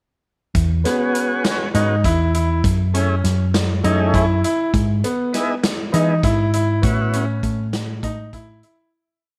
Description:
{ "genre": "progressive instrumental, band music in an uneven meter", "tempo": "200 BPM (eighths)", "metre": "7/8", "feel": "straight", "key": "unclear", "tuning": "A4 = 440 Hz", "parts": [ { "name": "hollow-body short-scale picked electric bass", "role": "bass", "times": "0.5-8.6 s", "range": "E2 to E3", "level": "-21 LUFS", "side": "equal", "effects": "none" }, { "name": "swinging big-band drum kit", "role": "drums", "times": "0.5-8.8 s", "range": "hi-hat, kick drum, snare drum", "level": "-26 LUFS", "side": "equal", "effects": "none" }, { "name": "tonewheel organ", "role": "accompaniment", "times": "0.8-7.3 s", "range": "A3 to G#4", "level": "-26 LUFS", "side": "equal", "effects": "slow rotary speaker" }, { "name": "clear grand piano", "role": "arpeggios", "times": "0.9-8.9 s", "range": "B3 to E4", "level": "-25 LUFS", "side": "equal", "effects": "none" } ], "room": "light reverb, studio reverb", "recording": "none", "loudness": "-19 LUFS", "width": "mono", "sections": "0.6-8.9 groove", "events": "fade-out 6.8-8.9", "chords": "0.6 E6; 2.6 F#m7; 4.7 Emaj7/G#; 6.8 A6" }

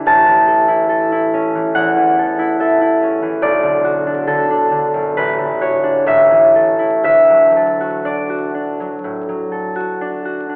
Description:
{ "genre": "classical, solo harp piece", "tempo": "59-73 BPM", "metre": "4/4", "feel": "rubato", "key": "D major", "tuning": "A4 = 439 Hz", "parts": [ { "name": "concert harp", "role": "solo", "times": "0.0-10.6 s", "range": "A1 to A5", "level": "-15 LUFS", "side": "equal", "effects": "none" } ], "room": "wet concert hall reverb, RT60 2.0 s", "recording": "vinyl crackle, telephone sound", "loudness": "-15 LUFS", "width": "mono", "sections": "0.0-10.6 A section", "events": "none", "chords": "0.1 A; 3.4 Bm; 5.1 D/A; 6.1 A; 7.0 D" }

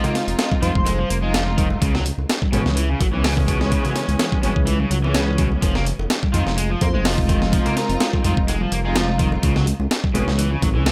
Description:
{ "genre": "breakbeat, breaks", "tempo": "126 BPM", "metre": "4/4", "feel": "swing 54% on 16ths", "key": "unclear", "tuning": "A4 = 440 Hz", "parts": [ { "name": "overdriven semi-hollow guitar", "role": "riff", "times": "0.0-10.9 s", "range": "Cb3 to Bb3", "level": "-30 LUFS", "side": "equal", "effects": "vintage 12-bit sampler grit, digital delay" }, { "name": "rich studio string section", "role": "stabs", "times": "0.0-10.9 s", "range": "Fb3 to F4", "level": "-28 LUFS", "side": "equal", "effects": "vintage 12-bit sampler grit, digital delay" }, { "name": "breakbeat sampler-style drum kit", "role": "drums", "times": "0.0-10.9 s", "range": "hi-hat, kick drum, snare drum", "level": "-23 LUFS", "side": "equal", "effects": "studio reverb" }, { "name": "bongos and congas", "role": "percussion", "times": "0.0-10.7 s", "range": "none", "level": "-32 LUFS", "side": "equal", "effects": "none" }, { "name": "dark detuned saw bass", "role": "bass", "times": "0.3-10.9 s", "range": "F1 to F2", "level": "-24 LUFS", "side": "equal", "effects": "none" }, { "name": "airy dreamy lead", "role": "melody", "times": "0.6-1.1, 6.8-8.0 s", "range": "Bb4 to C5", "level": "-32 LUFS", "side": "equal", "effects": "chorus, small speaker sound, digital delay" } ], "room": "light reverb", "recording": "none", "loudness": "-20 LUFS", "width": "mono", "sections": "0.0-10.9 A section", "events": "none", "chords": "0.0 Fm7; 1.8 Dbm7; 5.6 Fm7; 9.4 Dbm7" }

